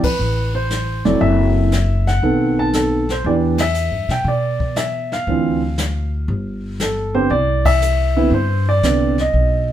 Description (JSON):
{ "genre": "jazz piano trio", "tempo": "118 BPM", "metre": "4/4", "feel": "swing 68% on 8ths", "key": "C major", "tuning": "A4 = 439 Hz", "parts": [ { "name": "dark baby grand piano", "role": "melody", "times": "0.0-9.7 s", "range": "D3 to A5", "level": "-18 LUFS", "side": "right 1 dB", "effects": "plate reverb" }, { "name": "upright bass", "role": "bass", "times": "0.0-9.7 s", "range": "F1 to B2", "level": "-19 LUFS", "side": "equal", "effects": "none" }, { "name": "jazz brush drum kit", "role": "drums", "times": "0.0-9.7 s", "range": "brushed snare drum, hi-hat, kick drum, ride cymbal, snare drum", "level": "-25 LUFS", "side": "left 2 dB", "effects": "none" } ], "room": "moderate studio reverb, RT60 0.6 s", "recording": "heard from further back in the room", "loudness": "-15 LUFS", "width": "side -11 dB against mid", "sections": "0.0-9.7 A section", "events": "band accent 0.0, 3.5, 7.6", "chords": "0.0 Dm7 (rootless); 1.2 F#m7b5; 2.2 B7b9; 3.2 Em7; 5.3 Dm9; 6.3 N.C.; 7.3 Cmaj9", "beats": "0.20 0.70 | 1.21 1.72 2.23 2.74 | 3.24 3.75 4.26 4.77 | 5.27 5.78 6.29 6.80 | 7.30 7.81 8.32 8.83 | 9.34" }